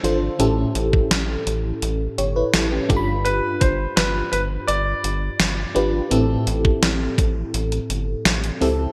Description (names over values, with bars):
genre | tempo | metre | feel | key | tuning
1980s-style pop | 84 BPM | 4/4 | straight | unclear | A4 = 440 Hz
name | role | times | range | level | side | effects
FM electric piano with tremolo | accompaniment | 0.0-8.9 s | G2 to B5 | -25 LUFS | equal | phaser
rubbery square bass | bass | 0.0-8.9 s | G1 to C#2 | -27 LUFS | equal | none
clean 12-bit digital drum machine | drums | 0.0-8.8 s | hi-hat, kick drum, snare drum | -24 LUFS | equal | gated reverb
clear baby grand piano | melody | 3.2-5.7 s | B4 to D5 | -27 LUFS | equal | digital delay
room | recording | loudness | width
moderate plate reverb, RT60 3.2 s | bright 1980s-style digital production | -21 LUFS | mono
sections
0.0-8.9 A section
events
none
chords
0.4 A7; 2.9 G7; 6.1 Am7